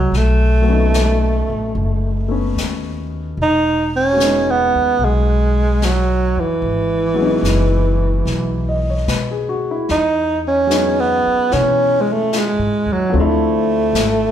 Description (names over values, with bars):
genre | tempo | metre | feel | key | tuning
jazz ballad | 74 BPM | 4/4 | swing 68% on 8ths | E major | A4 = 441 Hz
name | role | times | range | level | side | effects
breathy tenor saxophone | melody | 0.0-14.3 s | E3 to D#4 | -16 LUFS | right 2 dB | none
warm grand piano | accompaniment | 0.0-14.3 s | E3 to D#5 | -23 LUFS | left 3 dB | none
upright bass | bass | 0.0-14.3 s | E1 to B2 | -19 LUFS | equal | none
jazz brush drum kit | drums | 0.1-14.3 s | brushed snare drum, hi-hat, snare drum | -26 LUFS | left 4 dB | none
room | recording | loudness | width
moderate recital hall reverb, RT60 1.4 s | recorded in a church or concert hall | -14 LUFS | side -10 dB against mid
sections
0.0-9.9 A section; 9.9-14.3 A section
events
none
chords
0.1 B9; 3.4 Emaj13; 13.1 Dm7